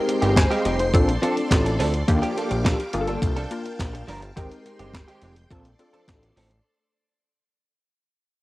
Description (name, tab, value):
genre	early-eighties boogie funk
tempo	105 BPM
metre	4/4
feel	straight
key	unclear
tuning	A4 = 440 Hz
part	funky polysynth comp	accompaniment	0.0-6.3 s	Bb3 to Ab5	-25 LUFS	left 1 dB	chorus, cassette tape
part	string machine, full ensemble	sustained chords	0.0-6.6 s	Ab3 to D6	-32 LUFS	equal	ensemble chorus, cassette tape
part	direct-recorded clean electric guitar	riff	0.1-6.6 s	Eb3 to Bb4	-29 LUFS	right 3 dB	ensemble chorus, cassette tape
part	clean 12-bit digital drum machine	drums	0.1-6.6 s	handclaps, hi-hat, kick drum, snare drum	-22 LUFS	equal	cassette tape
part	fat analog bass	bass	0.2-6.6 s	F1 to Eb2	-25 LUFS	equal	none
room	light reverb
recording	home recording on cassette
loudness	-20 LUFS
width	side -18 dB against mid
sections	0.0-6.7 A section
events	fade-out 0.0-6.7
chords	0.0 Abmaj7; 0.9 Bbmaj9; 2.1 Ebmaj9; 2.9 Gm9; 4.4 Abmaj7; 5.5 Bbmaj9